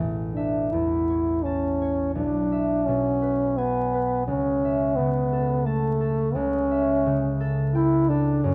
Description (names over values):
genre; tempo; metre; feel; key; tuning
classical, romantic duo for French horn and harp; 86 BPM; 3/4; rubato; A major; A4 = 440 Hz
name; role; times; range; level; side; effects
concert harp; accompaniment; 0.0-8.5 s; A1 to A5; -28 LUFS; equal; none
clear French horn; melody; 0.3-8.5 s; A3 to E4; -26 LUFS; equal; none
room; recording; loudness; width
wet recital hall reverb, RT60 1.5 s; close, detailed microphones, vinyl crackle; -24 LUFS; mono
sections
0.0-8.5 A section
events
none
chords
0.0 A; 2.2 E7/B; 4.3 A/C#; 6.3 A7/C#